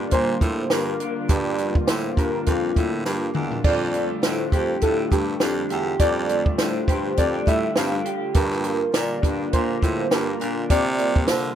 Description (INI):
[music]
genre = indie pop, bedroom pop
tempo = 102 BPM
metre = 4/4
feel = swing 55% on 16ths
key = unclear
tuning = A4 = 440 Hz
[part]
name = warbly lo-fi synth keys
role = melody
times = 0.0-11.6 s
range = F4 to F5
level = -26 LUFS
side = equal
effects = analog chorus, slapback echo
[part]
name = electric guitar through a small old amp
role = accompaniment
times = 0.0-11.6 s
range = G2 to G4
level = -28 LUFS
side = left 2 dB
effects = analog chorus, warbly pitch drift
[part]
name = warm analog pad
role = sustained chords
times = 0.0-11.6 s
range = C3 to F4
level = -31 LUFS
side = right 2 dB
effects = chorus
[part]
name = raspy baritone saxophone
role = bass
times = 0.0-11.5 s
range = E2 to D3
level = -26 LUFS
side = right 1 dB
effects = none
[part]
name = compact cocktail drum kit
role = drums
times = 0.1-11.4 s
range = crash cymbal, hi-hat, kick drum, snare drum, toms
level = -22 LUFS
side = right 1 dB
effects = none
[part]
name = tambourine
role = percussion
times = 0.7-11.4 s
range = none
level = -38 LUFS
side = right 10 dB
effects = none
[sound]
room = light reverb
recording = rough home demo mix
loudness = -20 LUFS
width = side -10 dB against mid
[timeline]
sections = 0.0-11.6 A section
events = drum fill 3.1-3.6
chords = 0.0 Gm7; 3.6 F69; 8.4 Gm7; 10.7 C7sus4